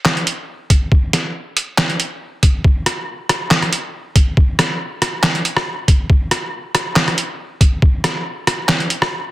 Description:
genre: dubstep.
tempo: 139 BPM.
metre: 4/4.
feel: swing 54% on 16ths, half-time.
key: none.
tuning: none.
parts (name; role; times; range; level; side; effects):
trip hop sampler-style drum kit; drums; 0.1-9.1 s; handclaps, hi-hat, rim click, snare drum; -16 LUFS; equal; soft clipping on snare.
electronic kick drum; drums; 0.7-7.9 s; none; -12 LUFS; equal; none.
room: moderate spring reverb, RT60 1.2 s.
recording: dense, heavily limited modern master.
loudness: -15 LUFS.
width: side -16 dB against mid.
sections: 0.0-9.3 A section.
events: none.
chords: none.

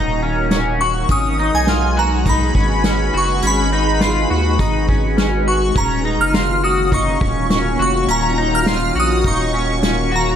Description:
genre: dream pop.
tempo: 103 BPM.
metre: 4/4.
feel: straight.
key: Eb minor.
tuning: A4 = 440 Hz.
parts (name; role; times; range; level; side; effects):
shimmering bell with halo; melody; 0.0-10.4 s; Ab5 to F6; -20 LUFS; right 1 dB; ensemble chorus, phaser, tape echo.
shimmering ambient pad; sustained chords; 0.0-10.4 s; Eb3 to Cb5; -22 LUFS; right 1 dB; chorus, built-in reverb.
electric guitar at the edge of break-up; arpeggios; 0.0-10.4 s; Db4 to Gb4; -21 LUFS; left 3 dB; analog chorus, tape echo.
saturated sub bass; bass; 0.0-10.4 s; Eb1 to Eb2; -20 LUFS; equal; none.
soft-mallet drum kit; drums; 0.5-10.0 s; hi-hat, kick drum, snare drum; -20 LUFS; equal; none.
room: light reverb.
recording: none.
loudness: -14 LUFS.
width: side -9 dB against mid.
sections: 0.0-10.4 A section.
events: none.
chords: 0.0 Ebm7; 1.1 Abm7; 5.8 Ebm7.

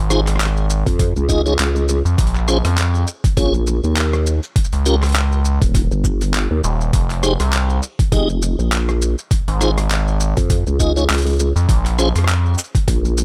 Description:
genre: glitch hop.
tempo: 101 BPM.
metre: 4/4.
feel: swing 57% on 16ths.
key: unclear.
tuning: A4 = 440 Hz.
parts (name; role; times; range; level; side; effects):
gritty driven synth bass; bass; 0.0-12.6 s; Eb1 to F2; -19 LUFS; equal; none.
tonewheel organ; stabs; 0.1-12.1 s; Db4 to Eb5; -24 LUFS; equal; chorus vibrato, sidechain pumping, tape echo.
boom bap sampler-style drum kit; drums; 0.1-13.2 s; handclaps, hi-hat, rim click, shaker; -25 LUFS; equal; overdrive.
vowel-sweep wobble bass; bass; 0.9-13.2 s; Eb1 to F2; -19 LUFS; equal; chorus.
electronic kick drum; drums; 0.9-13.0 s; none; -20 LUFS; equal; overdrive.
room: little or no reverb.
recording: none.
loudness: -17 LUFS.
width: mono.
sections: 0.0-13.2 A section.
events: none.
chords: 0.0 Dbadd9; 2.2 Bbm7; 4.6 Eb7; 6.9 Fm9; 9.3 Dbadd9; 11.7 Bbm9.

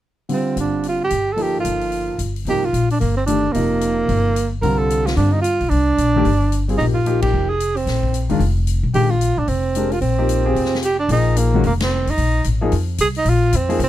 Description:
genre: modal jazz.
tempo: 222 BPM.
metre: 4/4.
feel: swing 61% on 8ths.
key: C minor.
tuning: A4 = 440 Hz.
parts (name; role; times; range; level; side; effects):
breathy tenor saxophone; melody; 0.3-13.9 s; Bb3 to Bb4; -20 LUFS; right 3 dB; none.
warm concert grand piano; accompaniment; 0.3-13.8 s; C3 to Bb4; -22 LUFS; left 2 dB; none.
swinging big-band drum kit; drums; 0.3-13.9 s; hi-hat, kick drum, ride cymbal, snare drum; -31 LUFS; left 4 dB; none.
upright bass; bass; 0.6-13.9 s; F1 to G2; -19 LUFS; left 1 dB; none.
room: little or no reverb.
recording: close, detailed microphones.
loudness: -16 LUFS.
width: side -13 dB against mid.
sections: 0.3-2.5 A section; 2.5-11.1 B section; 11.1-13.9 C section.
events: band accent 7.2, 11.8.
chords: 0.3 C13sus4; 2.5 C9sus4; 11.1 Bb9sus4.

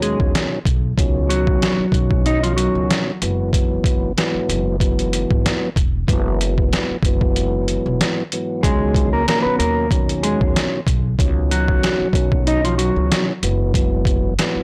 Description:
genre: hip hop, boom-bap hip-hop.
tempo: 94 BPM.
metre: 4/4.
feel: swing 55% on 16ths.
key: unclear.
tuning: A4 = 440 Hz.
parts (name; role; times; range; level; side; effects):
mellow electric guitar; melody; 0.0-3.0, 8.6-13.3 s; F3 to Eb5; -23 LUFS; equal; spring reverb, high-pass filter, low-pass filter, digital delay.
mellow tonewheel organ; accompaniment; 0.0-14.6 s; Ab2 to Db4; -25 LUFS; equal; overdrive, chorus vibrato, slow rotary speaker, cassette tape, high-pass filter, low-pass filter.
upright bass; bass; 0.0-14.6 s; Fb1 to Eb2; -25 LUFS; equal; none.
trip hop sampler-style drum kit; drums; 0.0-14.6 s; hi-hat, kick drum, snare drum; -21 LUFS; equal; overdrive.
room: little or no reverb.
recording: blown-out, overdriven recording, overdrive.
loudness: -18 LUFS.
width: mono.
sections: 0.0-14.6 A section.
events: none.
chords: 0.0 Db9sus4; 3.2 Gb9sus4; 8.6 Db9sus4; 13.4 Gb9sus4.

